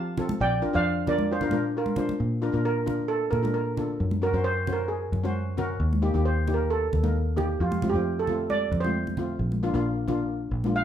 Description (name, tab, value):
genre	calypso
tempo	133 BPM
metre	4/4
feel	straight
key	Bb major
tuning	A4 = 440 Hz
part	steel pan	melody	0.0-10.8 s	F4 to A5	-28 LUFS	right 4 dB	none
part	fingered electric bass	bass	0.0-10.8 s	Bb1 to F3	-28 LUFS	equal	none
part	steel pan	accompaniment	0.2-10.8 s	A3 to C5	-30 LUFS	left 3 dB	none
part	congas	percussion	0.2-10.7 s	none	-32 LUFS	right 1 dB	none
room	moderate large studio reverb, RT60 0.8 s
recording	band playing live in one room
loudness	-24 LUFS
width	side -9 dB against mid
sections	0.0-2.2 A section; 2.2-10.8 B section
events	steel pan solo 2.2-10.8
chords	0.4 Bbadd9; 2.2 Bb; 4.0 Gb; 5.8 Eb; 7.6 F; 9.4 Bb